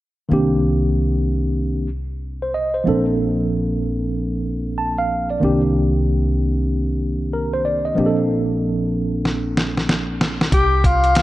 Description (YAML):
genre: hip hop, jazz-hop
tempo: 94 BPM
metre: 4/4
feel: swing 63% on 16ths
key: unclear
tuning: A4 = 441 Hz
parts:
  - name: tine electric piano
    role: accompaniment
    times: 0.3-10.5 s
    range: Eb3 to A5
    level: -19 LUFS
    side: right 1 dB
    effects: medium stereo tremolo
  - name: upright bass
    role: bass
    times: 0.3-11.2 s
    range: Bb1 to C2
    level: -22 LUFS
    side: equal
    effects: none
  - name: dusty soul sampler-style drum kit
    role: drums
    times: 9.3-11.2 s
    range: hi-hat, kick drum, snare drum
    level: -19 LUFS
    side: equal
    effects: none
  - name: mellow tenor saxophone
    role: melody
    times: 10.5-11.2 s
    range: F4 to G4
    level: -16 LUFS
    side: left 2 dB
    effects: slapback echo
room: light reverb, small room ambience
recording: dark, warm production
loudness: -17 LUFS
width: side -16 dB against mid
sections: 0.3-10.5 A section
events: drum fill 9.2-10.5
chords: 0.3 Cm7; 2.9 Bbmaj9; 5.4 Cm7; 8.0 Bbmaj9; 10.5 C5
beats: | 0.31 0.95 1.59 2.23 | 2.86 3.50 4.14 4.78 | 5.42 6.06 6.69 7.33 | 7.97 8.61 9.25 9.88 | 10.52 11.16